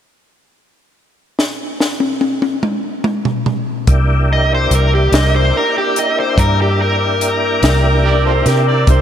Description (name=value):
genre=slow blues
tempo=48 BPM (dotted quarters)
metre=12/8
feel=straight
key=C mixolydian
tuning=A4 = 440 Hz
part: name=compact cocktail drum kit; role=drums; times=1.4-9.0 s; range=hi-hat, kick drum, snare drum, toms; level=-17 LUFS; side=left 1 dB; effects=none
part: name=tonewheel organ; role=sustained chords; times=3.9-9.0 s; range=D3 to G4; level=-18 LUFS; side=equal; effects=slow rotary speaker, chorus vibrato
part: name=vintage muted fingered electric bass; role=bass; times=3.9-9.0 s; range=C2 to C3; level=-14 LUFS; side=equal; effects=none
part: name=dark smooth lead guitar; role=melody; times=4.3-9.0 s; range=G4 to Eb5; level=-17 LUFS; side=left 1 dB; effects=overdrive
part: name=overdriven harmonica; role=second line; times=8.0-9.0 s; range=F4 to D5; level=-19 LUFS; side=right 5 dB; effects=tape echo
room=moderate huge ambient reverb, RT60 6.2 s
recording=dreamy mix soaked in reverb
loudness=-12 LUFS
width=side -9 dB against mid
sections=0.0-3.9 A section; 3.9-9.0 B section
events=drum fill 1.4-3.9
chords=0.0 N.C.; 3.9 C9